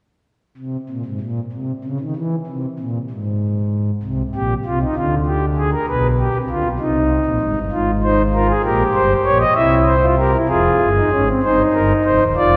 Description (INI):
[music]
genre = classical, baroque-style 3-part fugue for pipe organ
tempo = 64 BPM (dotted quarters)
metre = 6/8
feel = straight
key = unclear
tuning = A4 = 440 Hz
[part]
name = pipe organ, principal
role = solo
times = 0.6-12.6 s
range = Eb1 to E5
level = -18 LUFS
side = equal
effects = none
[sound]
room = wet church reverb, RT60 2.6 s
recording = none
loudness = -18 LUFS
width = mono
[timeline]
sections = 0.3-12.6 A section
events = none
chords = 0.3 N.C.; 4.0 Cm; 5.0 Ddim; 5.9 G7/B; 6.8 Cm; 7.7 Fm/Ab; 8.6 Gdim; 9.6 C7; 10.5 Fm; 11.4 Cm/G